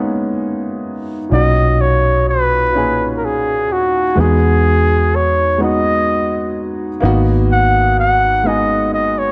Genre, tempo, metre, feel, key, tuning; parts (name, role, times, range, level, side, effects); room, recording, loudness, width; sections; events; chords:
slow six-eight R&B; 42 BPM (dotted quarters); 6/8; straight; B major; A4 = 440 Hz
warm baby grand piano; accompaniment; 0.0-9.3 s; A#2 to G#4; -21 LUFS; equal
breathy flugelhorn; melody; 1.3-9.3 s; F#4 to F#5; -17 LUFS; equal
vintage muted fingered electric bass; bass; 1.3-9.3 s; G#1 to E2; -19 LUFS; equal
light reverb, small room reverb; dark, warm production; -15 LUFS; mono
0.0-1.3 A section; 1.3-9.3 B section
break 0.0-1.3
0.0 F#9sus4 (rootless); 1.3 Bmaj7; 4.2 Emaj9; 7.0 G#m7